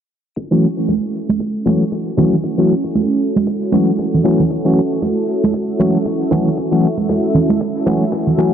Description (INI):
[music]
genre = deep house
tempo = 116 BPM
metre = 4/4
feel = swing 57% on 16ths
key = F# minor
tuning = A4 = 440 Hz
[part]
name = warm analog pad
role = sustained chords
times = 0.4-8.5 s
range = C#4 to E5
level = -21 LUFS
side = equal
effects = chorus, sidechain pumping
[part]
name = electronic kick drum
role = drums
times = 0.4-8.2 s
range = none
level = -29 LUFS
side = left 1 dB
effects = high-pass filter on kick, high-pass filter on room
[part]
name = modern studio drum kit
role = drums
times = 0.4-8.5 s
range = hi-hat, snare drum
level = -37 LUFS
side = left 2 dB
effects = sidechain pumping on hats, high-pass filter on hats, high-pass filter on snare, high-pass filter on room
[part]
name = warbly tape-like pad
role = texture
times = 5.5-8.5 s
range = none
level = barely audible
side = none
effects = none
[part]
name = percussive organ stab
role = stabs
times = 0.5-8.5 s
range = E3 to F#4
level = -16 LUFS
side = left 1 dB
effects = chorus, sidechain pumping, digital delay
[part]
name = congas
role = percussion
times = 0.9-8.4 s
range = none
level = -18 LUFS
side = right 4 dB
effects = none
[sound]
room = light reverb, studio reverb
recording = dense, heavily limited modern master, low-pass filter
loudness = -14 LUFS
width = side -8 dB against mid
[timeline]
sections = 0.4-8.5 A section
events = filter sweep 0.4-8.5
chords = 0.4 F#m7